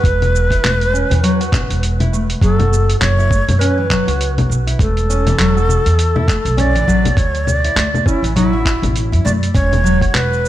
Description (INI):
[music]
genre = organic downtempo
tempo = 101 BPM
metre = 4/4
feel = swing 58% on 16ths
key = unclear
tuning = A4 = 439 Hz
[part]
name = breathy bright low Native American-style wooden flute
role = melody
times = 0.0-10.5 s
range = E4 to D5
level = -19 LUFS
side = equal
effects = digital delay
[part]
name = nylon-string guitar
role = arpeggios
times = 0.0-10.5 s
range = E3 to F#4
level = -21 LUFS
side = left 1 dB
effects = tape echo
[part]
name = upright bass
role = bass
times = 0.0-10.5 s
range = E1 to F#2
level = -16 LUFS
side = equal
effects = tube saturation, sidechain pumping
[part]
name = dusty soul sampler-style drum kit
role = drums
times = 0.0-10.5 s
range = congas, handclaps, hi-hat, shaker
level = -20 LUFS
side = left 2 dB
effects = overdrive
[part]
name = electronic kick drum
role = drums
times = 0.0-10.1 s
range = none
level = -15 LUFS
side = equal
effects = overdrive
[sound]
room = light reverb, small room ambience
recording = dark, warm production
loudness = -12 LUFS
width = side -13 dB against mid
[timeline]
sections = 0.0-10.5 A section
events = none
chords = 0.0 Esus24; 2.4 F#m7; 4.8 E9sus4; 7.2 Dadd9; 9.6 Esus2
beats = | 0.05 0.64 1.23 1.83 | 2.42 3.02 3.61 4.21 | 4.80 5.39 5.99 6.58 | 7.17 7.77 8.36 8.96 | 9.55 10.14